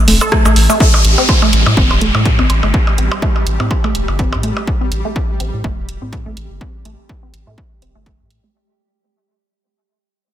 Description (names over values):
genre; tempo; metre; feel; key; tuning
minimal techno; 124 BPM; 4/4; swing 55% on 16ths; A minor; A4 = 439 Hz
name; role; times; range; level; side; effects
resonant blip pluck; riff; 0.1-8.5 s; A3 to A4; -20 LUFS; equal; phaser, sidechain pumping, dub echo
round analog bass; bass; 0.1-8.4 s; E1 to A2; -16 LUFS; equal; sidechain pumping
punchy analog drum machine; drums; 0.1-8.4 s; hi-hat, rim click, shaker; -19 LUFS; right 2 dB; overdrive
percussion blips; percussion; 0.2-4.7 s; none; -22 LUFS; right 1 dB; ping-pong delay
electronic kick drum; drums; 0.3-8.2 s; none; -16 LUFS; equal; overdrive
downlifter; sound effects; 0.8-4.7 s; none; -19 LUFS; equal; none
pulsing gated texture; texture; 1.0-8.6 s; G3 to G4; -27 LUFS; right 2 dB; chorus, built-in reverb, sidechain pumping
room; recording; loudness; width
light reverb; dense, heavily limited modern master; -11 LUFS; side -11 dB against mid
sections
0.8-8.5 A section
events
fade-out 0.8-8.5; filter sweep on analog synth bass 0.8-8.5; filter sweep on synth arpeggio sound 0.8-8.5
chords
0.0 A5; 0.8 A7(no3)